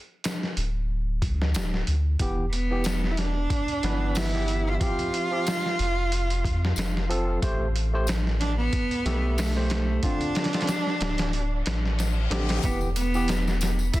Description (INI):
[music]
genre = trip hop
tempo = 92 BPM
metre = 4/4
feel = swing 55% on 16ths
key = E phrygian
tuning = A4 = 440 Hz
[part]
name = trip hop sampler-style drum kit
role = drums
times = 0.2-14.0 s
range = hi-hat, kick drum, snare drum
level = -28 LUFS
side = equal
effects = none
[part]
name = tambourine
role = percussion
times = 0.2-14.0 s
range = none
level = -40 LUFS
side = left 6 dB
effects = none
[part]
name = soft dub sub bass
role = bass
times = 0.6-13.9 s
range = D1 to F2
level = -26 LUFS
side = equal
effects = none
[part]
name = barky tine electric piano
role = accompaniment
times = 2.2-13.3 s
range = D3 to E5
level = -32 LUFS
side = equal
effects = harmonic tremolo, tape echo
[part]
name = rich cello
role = melody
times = 2.5-14.0 s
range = A3 to F4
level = -29 LUFS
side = right 2 dB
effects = tape echo
[part]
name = reverse cymbal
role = sound effects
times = 11.6-12.6 s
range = none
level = -37 LUFS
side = left 5 dB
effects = none
[sound]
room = digital ambience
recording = dense, heavily limited modern master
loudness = -23 LUFS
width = side -16 dB against mid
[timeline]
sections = 0.0-12.6 A section; 12.6-14.0 B section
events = reverse cymbal 11.6-12.6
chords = 0.0 N.C.; 2.2 Em; 4.8 Fsus2; 7.4 Am7; 10.0 Dm7; 12.6 Em